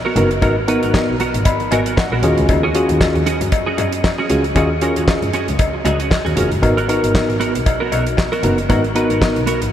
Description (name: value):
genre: early-eighties boogie funk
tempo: 116 BPM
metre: 4/4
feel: swing 56% on 16ths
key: unclear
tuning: A4 = 440 Hz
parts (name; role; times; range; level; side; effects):
- semi-hollow electric guitar; riff; 0.0-9.7 s; Cb4 to Cb5; -22 LUFS; right 3 dB; ensemble chorus
- tine electric piano; accompaniment; 0.2-9.4 s; Cb4 to Cb6; -19 LUFS; left 1 dB; none
- warm double bass; bass; 0.2-9.7 s; F1 to Gb2; -21 LUFS; equal; none
- damped 70s drum kit; drums; 0.2-9.7 s; handclaps, hi-hat, kick drum, snare drum; -20 LUFS; equal; none
- cowbell; percussion; 0.4-9.3 s; none; -25 LUFS; left 5 dB; none
room: wet huge ambient reverb, RT60 8.8 s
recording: dreamy mix soaked in reverb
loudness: -14 LUFS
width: side -10 dB against mid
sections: 0.0-9.7 A section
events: tine electric piano fill 0.9-2.5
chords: 0.0 Abm9; 2.2 Ebm11; 6.6 Abm9